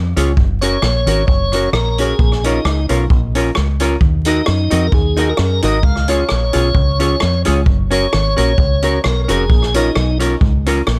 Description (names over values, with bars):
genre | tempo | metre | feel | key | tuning
ska | 132 BPM | 4/4 | swing 54% on 8ths | unclear | A4 = 440 Hz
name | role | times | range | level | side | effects
deep dub fingered electric bass | bass | 0.0-11.0 s | F1 to Gb2 | -19 LUFS | equal | none
archtop guitar, miked and amplified | accompaniment | 0.2-10.8 s | Db4 to Eb5 | -20 LUFS | equal | none
vintage drum kit | drums | 0.2-11.0 s | hi-hat, kick drum, rim click | -20 LUFS | equal | none
tonewheel organ | melody | 0.6-10.2 s | Eb4 to F5 | -23 LUFS | equal | overdrive, slow rotary speaker, dub echo
room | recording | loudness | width
light reverb | vinyl crackle | -15 LUFS | mono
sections
0.0-11.0 A section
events
none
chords
0.4 Gb; 2.2 Bbm; 4.0 Ebm; 5.8 Db; 7.7 Gb; 9.5 Bbm